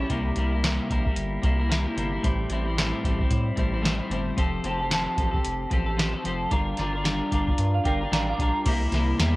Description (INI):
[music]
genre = indie pop, bedroom pop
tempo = 112 BPM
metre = 4/4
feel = swing 60% on 16ths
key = unclear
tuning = A4 = 440 Hz
[part]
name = twelve-string electric guitar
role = accompaniment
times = 0.0-9.4 s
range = A2 to Bb4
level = -27 LUFS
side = left 1 dB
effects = lush chorus, vibrato effect
[part]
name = round analog bass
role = bass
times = 0.0-9.4 s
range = F1 to A2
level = -27 LUFS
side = equal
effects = none
[part]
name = soft vintage rhythm box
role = drums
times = 0.1-9.3 s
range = crash cymbal, hi-hat, kick drum, snare drum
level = -27 LUFS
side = equal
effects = cassette tape
[part]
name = soft synth bell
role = second line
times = 7.7-8.6 s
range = Bb4 to D6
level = -31 LUFS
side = right 4 dB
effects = phaser, analog chorus, tape echo
[sound]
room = light reverb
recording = home recording on cassette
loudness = -23 LUFS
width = side -20 dB against mid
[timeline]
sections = 0.1-8.7 A section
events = none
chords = 0.1 C7; 2.2 Am7; 4.4 Fadd9; 6.5 Gm7; 8.7 C7